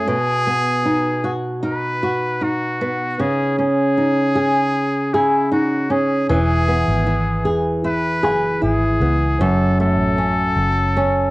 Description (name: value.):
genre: acoustic pop.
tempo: 77 BPM.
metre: 4/4.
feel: straight.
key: E major.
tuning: A4 = 440 Hz.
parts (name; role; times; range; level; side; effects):
trumpet with straight mute; melody; 0.0-11.3 s; E4 to B4; -22 LUFS; left 1 dB; none.
flamenco guitar; accompaniment; 0.0-11.3 s; F#2 to G#4; -18 LUFS; equal; none.
vintage muted fingered electric bass; bass; 6.3-11.3 s; E1 to C#2; -21 LUFS; equal; none.
room: wet studio reverb, RT60 0.5 s.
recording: home recording on cassette.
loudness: -16 LUFS.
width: side -20 dB against mid.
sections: 0.0-11.3 A section.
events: none.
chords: 0.1 B; 3.2 C#sus2; 6.3 E; 9.4 F#madd9.